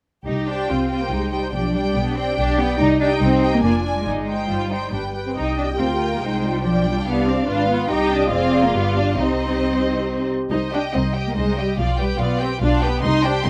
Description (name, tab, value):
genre	quick classical-period movement for string orchestra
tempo	142 BPM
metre	3/4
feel	rubato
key	C minor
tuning	A4 = 440 Hz
part	rich symphonic violin section	second line	0.3-13.5 s	C4 to Eb5	-28 LUFS	equal	none
part	rich chamber double bass section	bass	0.3-13.5 s	F1 to D2	-26 LUFS	equal	none
part	warm symphonic cello section	bass	0.3-13.5 s	C2 to Eb4	-25 LUFS	equal	none
part	warm symphonic violin section	melody	0.5-13.5 s	Eb5 to C6	-30 LUFS	equal	none
part	dark symphonic viola section	accompaniment	0.5-13.5 s	F3 to Eb5	-27 LUFS	equal	none
room	light reverb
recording	close, detailed microphones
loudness	-20 LUFS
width	mono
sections	0.3-10.5 A section; 10.5-13.5 A section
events	none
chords	0.3 Cm; 1.5 G7/B; 2.8 Cm; 3.6 Ddim/F; 4.1 Cm/G; 4.9 G; 5.4 Cm; 6.7 G7/B; 7.9 Cm; 8.3 Ddim/F; 8.7 G7; 9.2 Cm; 11.8 G7/B